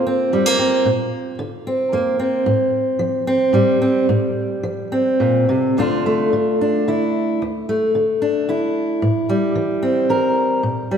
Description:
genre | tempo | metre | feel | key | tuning
folk, solo fingerstyle acoustic guitar | 111 BPM | 3/4 | rubato | D minor | A4 = 440 Hz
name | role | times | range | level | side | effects
fingerpicked steel-string acoustic guitar | solo | 0.0-11.0 s | D2 to Bb4 | -16 LUFS | equal | none
room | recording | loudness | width
wet scoring stage reverb, RT60 1.9 s | recorded in a church or concert hall | -16 LUFS | side -7 dB against mid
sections
0.0-5.8 A section; 5.8-11.0 B section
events
none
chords
0.0 Bbadd9; 2.5 Fadd9/A; 5.8 Dm; 9.0 Am7

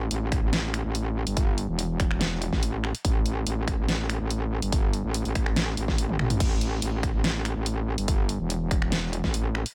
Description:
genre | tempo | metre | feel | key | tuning
heavy wobble dubstep | 143 BPM | 4/4 | half-time | unclear | A4 = 440 Hz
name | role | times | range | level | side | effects
metallic wobble bass | bass | 0.0-9.6 s | E1 to A1 | -30 LUFS | equal | chorus, overdrive
big-room dance drum kit | drums | 0.1-9.7 s | crash cymbal, finger snaps, hi-hat, snare drum, toms | -32 LUFS | equal | none
electronic kick drum | drums | 0.3-9.3 s | none | -28 LUFS | equal | none
room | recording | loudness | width
digital ambience | none | -27 LUFS | mono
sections
0.0-9.7 A section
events
drum fill 6.1-6.4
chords
none

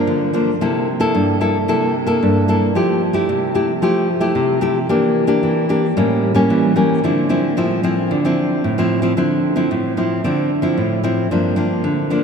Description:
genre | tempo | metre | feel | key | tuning
samba | 112 BPM | 4/4 | straight | D minor | A4 = 439 Hz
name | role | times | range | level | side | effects
nylon-string guitar | solo | 0.0-12.2 s | G2 to A4 | -15 LUFS | equal | none
room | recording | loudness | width
wet cathedral reverb, RT60 6.1 s | in a vast, echoing space | -15 LUFS | side -6 dB against mid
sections
0.0-11.3 A section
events
none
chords
0.0 Gm7 (rootless); 0.6 C6; 2.8 Fmaj9; 4.9 Em7b5; 6.0 A7b9; 7.0 Dm9; 11.3 Gm7

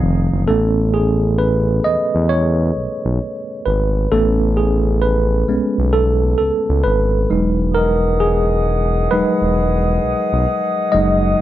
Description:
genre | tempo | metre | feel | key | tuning
R&B | 66 BPM | 4/4 | swing 64% on 16ths | unclear | A4 = 440 Hz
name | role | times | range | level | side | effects
tine electric piano | accompaniment | 0.0-11.4 s | C3 to Eb5 | -17 LUFS | right 1 dB | overdrive, fast stereo tremolo
mellow flute section | sustained chords | 0.0-0.4, 7.7-11.4 s | Eb4 to D#6 | -21 LUFS | left 3 dB | none
smooth synth bass | bass | 0.0-11.3 s | E1 to E2 | -18 LUFS | equal | none
room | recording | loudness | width
light reverb | dry, close 1970s-style studio recording | -14 LUFS | side -13 dB against mid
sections
0.5-11.4 A section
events
tine electric piano solo 0.5-11.4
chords
0.5 Amaj9; 7.3 Emaj9

